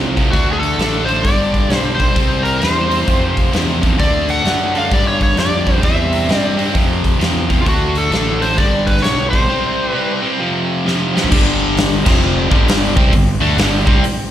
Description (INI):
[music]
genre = blues rock power trio and southern rock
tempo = 131 BPM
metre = 4/4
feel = swing 64% on 8ths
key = unclear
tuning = A4 = 444 Hz
[part]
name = cranked stack guitar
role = riff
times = 0.0-14.0 s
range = F2 to D4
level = -17 LUFS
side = equal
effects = overdrive
[part]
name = fuzz fingered electric bass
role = bass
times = 0.0-14.0 s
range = F1 to G2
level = -20 LUFS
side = equal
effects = overdrive
[part]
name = huge arena drum kit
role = drums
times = 0.2-14.2 s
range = crash cymbal, hi-hat, kick drum, snare drum, toms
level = -17 LUFS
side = equal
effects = none
[part]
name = overdriven slide guitar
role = melody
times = 0.3-10.2 s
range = F4 to F#5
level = -19 LUFS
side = equal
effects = slapback echo
[sound]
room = little or no reverb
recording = live gig heard through the venue's PA, recital hall reverb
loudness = -13 LUFS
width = side -11 dB against mid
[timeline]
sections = 0.0-11.3 A section; 11.3-14.3 B section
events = break 9.5-11.3; drum fill 10.9-11.3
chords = 0.3 D5; 1.2 G; 2.2 C; 3.1 F5; 4.0 D; 4.9 G5; 5.8 C; 6.7 F5; 7.7 D5; 8.6 G; 9.5 C5; 10.4 F5; 11.3 G5; 12.0 F5; 12.4 G5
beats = | 0.33 0.79 1.25 1.70 | 2.16 2.62 3.08 3.53 | 3.99 4.45 4.91 5.37 | 5.82 6.28 6.74 7.20 | 7.66 8.12 8.57 9.03 | 9.49 9.94 10.40 10.86 | 11.31 11.77 12.22 12.67 | 13.13 13.58 14.03